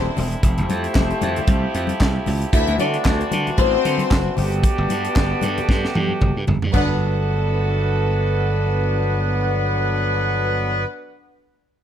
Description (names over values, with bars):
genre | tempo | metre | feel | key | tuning
disco | 114 BPM | 4/4 | swing 56% on 16ths | G major | A4 = 439 Hz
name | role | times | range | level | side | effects
dark studio string section | second line | 0.0-10.8 s | C4 to F#5 | -25 LUFS | left 4 dB | none
muted French horn section | sustained chords | 0.0-10.8 s | D3 to A4 | -26 LUFS | right 3 dB | none
mellow horn section | stabs | 0.0-10.8 s | F#3 to B5 | -25 LUFS | left 1 dB | none
glassy slap bass | bass | 0.0-10.8 s | E1 to D3 | -22 LUFS | equal | none
tight funk drum kit | drums | 0.2-6.9 s | china cymbal, handclaps, hi-hat, kick drum, snare drum, toms | -20 LUFS | equal | none
congas | percussion | 0.2-7.0 s | none | -29 LUFS | left 5 dB | none
room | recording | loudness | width
little or no reverb | none | -17 LUFS | side -10 dB against mid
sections
0.0-6.7 A section; 6.7-10.9 B section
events
drum fill 5.7-6.7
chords
0.4 Fmaj9; 2.5 D9; 4.4 Gmaj9